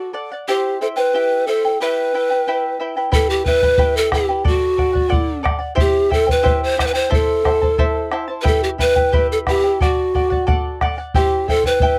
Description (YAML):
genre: andean folk, Andean ensemble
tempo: 90 BPM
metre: 2/4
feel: straight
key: E minor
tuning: A4 = 439 Hz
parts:
  - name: breathy mellow pan flute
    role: melody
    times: 0.0-12.0 s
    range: F#4 to C5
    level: -19 LUFS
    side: equal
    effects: none
  - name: charango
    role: accompaniment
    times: 0.0-12.0 s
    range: E4 to A5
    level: -24 LUFS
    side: equal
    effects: none
  - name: bombo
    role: percussion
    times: 3.1-12.0 s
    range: none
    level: -22 LUFS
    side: equal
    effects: none
room: light reverb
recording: dark, warm production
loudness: -17 LUFS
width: mono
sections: 0.0-3.1 A section; 3.1-12.0 A section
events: none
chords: 0.5 C; 1.8 Em; 4.5 D; 5.8 C; 7.1 Am; 8.5 Em; 9.8 D; 11.1 C